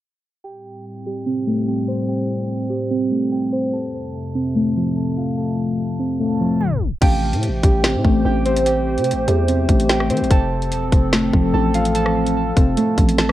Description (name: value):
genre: hip hop, drill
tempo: 146 BPM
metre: 4/4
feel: half-time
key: A minor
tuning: A4 = 440 Hz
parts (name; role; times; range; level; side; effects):
- warbly tape-like pad; sustained chords; 0.7-13.3 s; F2 to C5; -25 LUFS; equal; chorus, built-in reverb
- muted felt-like synth keys; arpeggios; 0.4-13.3 s; F3 to A5; -20 LUFS; equal; chorus, digital delay
- growling 808-style bass; bass; 7.0-13.3 s; E1 to E3; -21 LUFS; equal; none
- drill drum kit; drums; 7.0-13.3 s; crash cymbal, hi-hat, kick drum, rim click, snare drum; -18 LUFS; equal; none
room: light reverb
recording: worn, warbling old tape, cassette tape, warbly pitch drift, low-pass filter, tape stop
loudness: -16 LUFS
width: side -14 dB against mid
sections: 0.4-7.0 A section; 7.0-13.3 B section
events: filter sweep 0.4-7.0; tape stop 6.6-7.0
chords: 0.4 Am7; 3.7 F; 7.0 Am7; 10.3 F